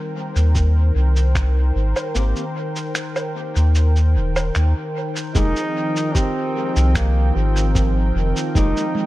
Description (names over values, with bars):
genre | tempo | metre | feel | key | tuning
ambient dub | 75 BPM | 4/4 | straight | F minor | A4 = 439 Hz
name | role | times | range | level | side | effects
warm analog pad | sustained chords | 0.0-9.1 s | Eb3 to G5 | -26 LUFS | equal | chorus
handpan | arpeggios | 0.0-9.1 s | G3 to Ab4 | -33 LUFS | right 1 dB | dub echo
soft dub sub bass | bass | 0.4-8.7 s | Eb1 to Eb2 | -16 LUFS | equal | none
electronic shaker, finger snaps and woodblock | drums | 0.4-8.9 s | none | -29 LUFS | right 1 dB | dub echo
electronic kick drum | drums | 0.6-8.7 s | none | -20 LUFS | equal | none
electric guitar at the edge of break-up | stabs | 2.1-8.8 s | Ab3 to G4 | -32 LUFS | left 2 dB | tremolo, dub echo
clear trombone | melody | 5.4-9.1 s | Bb3 to Eb4 | -24 LUFS | right 1 dB | dub echo
room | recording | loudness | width
little or no reverb | none | -17 LUFS | side -17 dB against mid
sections
0.0-5.4 A section; 5.4-9.1 B section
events
break 2.2-5.4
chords
0.0 Abmaj9 (rootless); 5.4 Fm11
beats
0.55 1.35 | 2.15 2.95 3.75 4.55 | 5.35 6.15 6.95 7.75 | 8.55